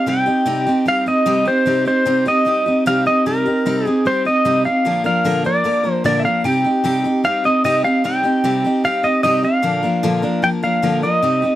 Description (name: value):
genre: country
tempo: 151 BPM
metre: 4/4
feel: straight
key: C minor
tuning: A4 = 440 Hz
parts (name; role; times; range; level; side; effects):
- pedal steel guitar; melody; 0.0-11.6 s; Bb4 to G5; -17 LUFS; equal; none
- picked steel-string acoustic guitar; accompaniment; 0.0-11.6 s; Bb2 to Bb4; -18 LUFS; equal; none
room: light reverb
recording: dry, close 1970s-style studio recording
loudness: -14 LUFS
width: side -14 dB against mid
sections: 0.1-11.6 A section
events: none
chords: 0.1 Cm; 4.9 Bb; 6.4 Cm; 9.6 Bb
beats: | 0.07 0.47 0.87 1.27 | 1.67 2.07 2.46 2.86 | 3.26 3.66 4.06 4.46 | 4.86 5.25 5.65 6.05 | 6.45 6.85 7.25 7.64 | 8.04 8.44 8.84 9.24 | 9.64 10.04 10.43 10.83 | 11.23